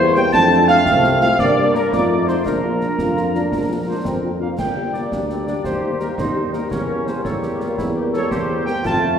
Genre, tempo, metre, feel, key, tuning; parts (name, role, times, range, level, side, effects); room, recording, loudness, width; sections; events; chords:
military-style march for wind band; 113 BPM (dotted quarters); 6/8; straight; A4 = 440 Hz
dark trumpet section; melody; 0.0-9.2 s; Bb4 to A5; -21 LUFS; right 1 dB
mellow euphonium; second line; 0.0-4.3 s; Bb3 to F4; -24 LUFS; right 2 dB
mellow wooden piccolo; second line; 0.0-4.4 s; Bb5 to A6; -25 LUFS; left 3 dB
mellow woodwind section; second line; 0.0-9.2 s; C4 to A5; -25 LUFS; left 1 dB
dark French horn section; accompaniment; 0.0-9.2 s; G3 to Bb4; -27 LUFS; left 3 dB
mellow trombone section; sustained chords; 0.0-9.2 s; G3 to F4; -26 LUFS; right 1 dB
mellow tuba; bass; 0.0-9.2 s; G1 to G2; -23 LUFS; right 1 dB
concert snare drum, clash cymbals and concert bass drum; drums; 0.2-9.0 s; -27 LUFS; equal
wet concert hall reverb, RT60 1.9 s; recorded in a church or concert hall; -16 LUFS; side -8 dB against mid
0.0-4.6 A section; 4.6-9.2 A section
0.3 F; 1.4 Gm; 1.9 F7; 2.5 Bb; 4.6 Gm; 5.6 Cm7/Eb; 6.7 Edim7